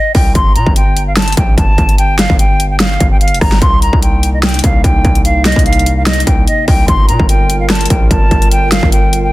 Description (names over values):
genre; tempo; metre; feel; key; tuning
hip hop, trap; 147 BPM; 4/4; half-time; unclear; A4 = 440 Hz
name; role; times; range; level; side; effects
hollow concert flute; melody; 0.0-9.3 s; Eb5 to C6; -16 LUFS; equal; tape echo
distorted 808-style bass; bass; 0.1-9.3 s; F1 to Bb2; -14 LUFS; equal; distortion
dubstep drum kit; drums; 0.1-9.2 s; hi-hat, kick drum, rim click, snare drum; -11 LUFS; equal; distortion
dark analog pad; sustained chords; 3.6-9.3 s; C3 to Bb4; -20 LUFS; equal; chorus
room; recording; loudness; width
digital ambience; dense, heavily limited modern master; -8 LUFS; side -18 dB against mid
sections
0.0-9.3 A section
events
none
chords
0.4 G7(no3); 3.6 Cm7; 6.9 Gm7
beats
| 0.35 0.76 1.17 1.58 | 1.98 2.39 2.80 3.21 | 3.62 4.03 4.43 4.84 | 5.25 5.66 6.07 6.47 | 6.88 7.29 7.70 8.11 | 8.52 8.92